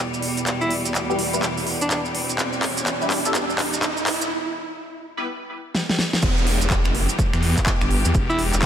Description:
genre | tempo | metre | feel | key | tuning
bass house | 125 BPM | 4/4 | swing 62% on 16ths | E minor | A4 = 440 Hz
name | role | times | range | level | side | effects
clear symphonic string section | sustained chords | 0.0-8.7 s | E2 to G4 | -28 LUFS | left 1 dB | sidechain pumping
riser and downlifter | sound effects | 0.4-8.7 s | none | -30 LUFS | right 2 dB | none
maracas | percussion | 0.1-8.7 s | none | -31 LUFS | right 6 dB | none
big-room dance drum kit | drums | 0.2-8.7 s | crash cymbal, finger snaps, handclaps, hi-hat, snare drum | -24 LUFS | equal | none
warm alto saxophone | melody | 0.6-2.0, 8.3-8.4 s | D4 to E4 | -26 LUFS | equal | tape echo
band-passed chord stab | stabs | 1.1-5.3 s | G3 to B4 | -28 LUFS | left 1 dB | phaser, ensemble chorus, sidechain pumping, tape echo
phased detuned saw bass | bass | 6.2-8.7 s | E1 to E2 | -21 LUFS | equal | phaser, tube saturation, sidechain pumping
electronic kick drum | drums | 6.2-8.7 s | none | -22 LUFS | equal | none
room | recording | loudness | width
moderate lush hall reverb, RT60 2.1 s | none | -20 LUFS | side -9 dB against mid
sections
0.0-6.2 A section; 6.2-8.7 B section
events
build-up 0.0-6.2; drum fill 0.0-4.3, 5.7-6.2; filter sweep on synth stab 0.0-6.2; riser 0.4-4.3; break 4.3-6.2; drop 6.2-8.7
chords
0.0 Em

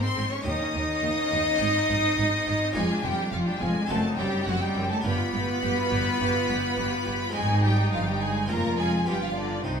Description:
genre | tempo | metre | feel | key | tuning
classical, baroque-style concerto movement with solo episodes | 104 BPM | 4/4 | straight | unclear | A4 = 439 Hz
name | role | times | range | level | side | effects
warm cello | melody | 0.0-9.8 s | C3 to Eb4 | -28 LUFS | equal | none
warm symphonic violin section | melody | 0.0-9.8 s | C5 to Eb6 | -32 LUFS | left 2 dB | none
rich chamber violin section | second line | 0.0-9.8 s | C4 to Eb5 | -30 LUFS | equal | none
harpsichord | accompaniment | 0.0-9.8 s | Eb2 to Ab4 | -36 LUFS | equal | none
rich chamber viola section | accompaniment | 0.0-9.8 s | Ab3 to G4 | -34 LUFS | left 1 dB | none
dark chamber cello section | bass | 0.2-9.8 s | Eb2 to C3 | -34 LUFS | right 1 dB | none
dark chamber double bass section | bass | 0.2-9.8 s | F1 to Eb2 | -30 LUFS | right 2 dB | none
room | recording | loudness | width
wet recital hall reverb, RT60 1.3 s | minimal, uncompressed stereo recording | -23 LUFS | side -6 dB against mid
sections
0.0-9.8 A section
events
none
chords
0.5 Eb7; 1.6 Ab; 2.7 Ddim/F; 3.9 F#dim7; 5.0 G7; 7.3 Ab; 8.5 Fm; 9.1 G7

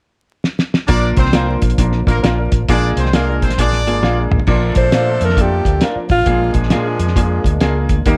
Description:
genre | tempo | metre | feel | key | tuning
uptempo 1960s-style soul | 134 BPM | 4/4 | swing 63% on 8ths | Bb major | A4 = 442 Hz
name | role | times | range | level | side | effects
cloth-damped thuddy drum kit | drums | 0.4-8.2 s | crash cymbal, hi-hat, kick drum, snare drum, toms | -19 LUFS | equal | none
clear horn section | second line | 0.9-8.2 s | F3 to D5 | -25 LUFS | equal | none
warm upright piano | accompaniment | 0.9-8.2 s | Bb3 to D5 | -23 LUFS | equal | none
percussive tonewheel organ | sustained chords | 0.9-8.2 s | F3 to Eb4 | -30 LUFS | equal | none
vintage muted fingered electric bass | bass | 0.9-8.2 s | Ab1 to Bb2 | -20 LUFS | equal | none
electric guitar at the edge of break-up | stabs | 1.3-7.7 s | D4 to F5 | -27 LUFS | equal | slapback echo
warm alto saxophone | melody | 4.8-6.5 s | F4 to C5 | -19 LUFS | equal | none
room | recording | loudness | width
light reverb, small room ambience | vinyl crackle | -15 LUFS | mono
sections
0.9-4.5 A section; 4.5-8.2 B section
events
drum fill 0.4-0.9, 4.0-4.5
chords
0.0 N.C.; 0.9 Bb; 2.7 Bb7; 4.5 Bb; 6.3 Bb7

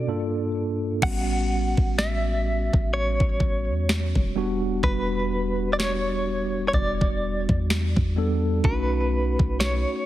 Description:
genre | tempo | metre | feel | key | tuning
contemporary R&B | 63 BPM | 4/4 | swing 58% on 16ths | E dorian | A4 = 442 Hz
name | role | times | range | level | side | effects
direct-recorded clean electric guitar | melody | 0.0-10.1 s | B4 to F#5 | -28 LUFS | equal | tremolo, tape echo
mellow tine electric piano | accompaniment | 0.0-10.1 s | G2 to A4 | -27 LUFS | right 1 dB | medium stereo tremolo
warm 808-style bass | bass | 1.0-9.9 s | E1 to E2 | -26 LUFS | equal | none
trap drum kit | drums | 1.0-9.9 s | crash cymbal, kick drum, snare drum | -26 LUFS | equal | overdrive
room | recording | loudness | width
digital ambience | heavily compressed radio sound, faint mains hum | -22 LUFS | side -14 dB against mid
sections
0.0-1.0 A section; 1.0-10.1 B section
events
break 0.0-1.0; hi-hats muted 1.0-10.1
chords
0.1 Gm7; 1.0 A13; 4.4 Em9; 8.6 B9

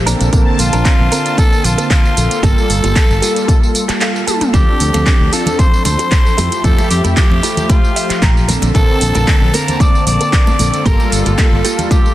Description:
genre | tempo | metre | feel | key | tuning
nu-disco, nu disco | 114 BPM | 4/4 | swing 53% on 16ths | unclear | A4 = 440 Hz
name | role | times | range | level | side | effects
mellow synth brass | accompaniment | 0.0-12.1 s | D3 to A5 | -19 LUFS | equal | chorus, slapback echo
fingered electric bass | bass | 0.0-11.6 s | G1 to F2 | -16 LUFS | equal | none
direct-recorded clean electric guitar | riff | 0.1-12.0 s | Bb3 to Bb5 | -22 LUFS | right 4 dB | analog chorus
house drum kit | drums | 0.1-12.1 s | handclaps, hi-hat, tambourine, toms | -20 LUFS | right 1 dB | none
electronic kick drum | drums | 0.3-12.0 s | none | -12 LUFS | equal | none
growling tenor saxophone | melody | 0.6-12.1 s | F4 to D5 | -20 LUFS | left 1 dB | tape echo
congas | percussion | 4.5-12.0 s | none | -24 LUFS | left 2 dB | none
room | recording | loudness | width
light reverb | dense, heavily limited modern master | -10 LUFS | side -14 dB against mid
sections
0.0-12.1 A section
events
clean electric guitar fill 3.8-4.5, 7.7-8.8; drum fill 4.3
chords
0.1 Bbmaj9; 2.4 Gm9; 4.5 Dm7; 6.4 Fmaj9; 8.5 Bbmaj9; 10.9 Gm9

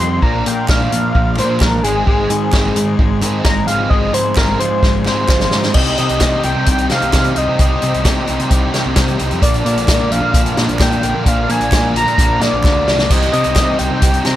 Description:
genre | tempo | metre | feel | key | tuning
indie rock | 130 BPM | 4/4 | straight | C minor | A4 = 438 Hz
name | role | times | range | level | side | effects
octave-doubled lead | melody | 0.0-14.4 s | Ab4 to C6 | -18 LUFS | equal | chorus
overdriven combo organ | sustained chords | 0.0-14.4 s | D4 to Ab5 | -30 LUFS | right 1 dB | none
biting overdriven guitar | riff | 0.0-14.4 s | Eb3 to G4 | -22 LUFS | right 6 dB | ensemble chorus
fuzz guitar | riff | 0.0-14.4 s | Bb2 to F4 | -22 LUFS | left 9 dB | distortion
growling picked electric bass | bass | 0.0-14.3 s | Ab1 to C3 | -20 LUFS | equal | overdrive
vintage drum kit | drums | 0.0-14.4 s | crash cymbal, hi-hat, kick drum, snare drum | -16 LUFS | equal | none
group handclap | percussion | 0.7-13.7 s | none | -29 LUFS | right 4 dB | none
room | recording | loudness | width
little or no reverb | none | -12 LUFS | side -13 dB against mid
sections
0.0-5.8 A section; 5.8-14.4 B section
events
analog synth lead solo 0.0-5.8; drum fill 4.8-5.8, 12.6-13.1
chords
0.2 Bb; 1.8 Ab; 3.7 Fm/Ab; 5.8 Cm; 9.4 Bb; 13.1 Cm

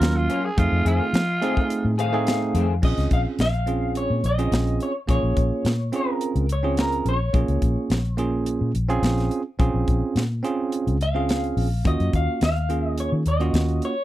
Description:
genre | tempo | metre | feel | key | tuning
straight-eighth soul blues | 106 BPM | 4/4 | straight | Bb minor | A4 = 440 Hz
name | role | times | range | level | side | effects
growling tenor saxophone | second line | 0.0-2.0 s | F4 to Bb4 | -26 LUFS | right 1 dB | none
bell-like tine electric piano | accompaniment | 0.0-13.9 s | Gb3 to G#4 | -25 LUFS | right 4 dB | none
vintage muted fingered electric bass | bass | 0.0-13.8 s | Bb1 to F3 | -23 LUFS | left 1 dB | none
tight funk drum kit | drums | 0.0-14.0 s | crash cymbal, hi-hat, kick drum, snare drum | -24 LUFS | equal | none
electric guitar through a small old amp | stabs | 0.3-2.7 s | Eb3 to G#4 | -28 LUFS | left 7 dB | analog chorus
electric guitar through a small old amp | melody | 2.0-14.0 s | Bb4 to F5 | -28 LUFS | left 1 dB | tremolo
room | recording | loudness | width
little or no reverb | dry, close 1970s-style studio recording | -20 LUFS | side -14 dB against mid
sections
0.0-2.8 A section; 2.8-14.0 B section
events
tenor saxophone solo 0.0-2.8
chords
0.0 Ebm9; 0.6 F7#9; 2.8 Bbm9; 11.8 Ebm9

